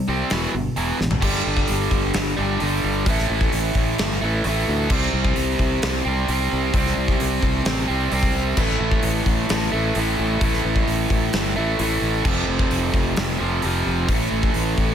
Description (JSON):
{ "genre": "hard rock", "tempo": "131 BPM", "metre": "4/4", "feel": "straight", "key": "A minor", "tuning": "A4 = 440 Hz", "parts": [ { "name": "biting overdriven guitar", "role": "riff", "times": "0.0-14.9 s", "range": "E2 to C4", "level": "-22 LUFS", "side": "right 1 dB", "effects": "none" }, { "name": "modern bright fingered electric bass", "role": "bass", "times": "0.1-14.9 s", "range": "E1 to D2", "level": "-25 LUFS", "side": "equal", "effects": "none" }, { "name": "gated 80s drum kit", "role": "drums", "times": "0.3-14.9 s", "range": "crash cymbal, hi-hat, kick drum, snare drum, toms", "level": "-24 LUFS", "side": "equal", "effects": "none" } ], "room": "light reverb, small room ambience", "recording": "none", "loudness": "-18 LUFS", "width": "side -9 dB against mid", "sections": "0.0-1.2 A section; 1.2-14.9 B section", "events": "drum fill 1.0", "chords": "0.3 Em; 1.2 G5; 3.1 A5; 4.9 C5; 8.6 A5; 12.3 F5; 14.1 A5", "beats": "0.31 0.77 | 1.23 1.69 2.15 2.61 | 3.07 3.53 3.98 4.44 | 4.90 5.36 5.82 6.28 | 6.74 7.20 7.66 8.12 | 8.58 9.04 9.50 9.96 | 10.42 10.88 11.34 11.79 | 12.26 12.71 13.17 13.63 | 14.09 14.55" }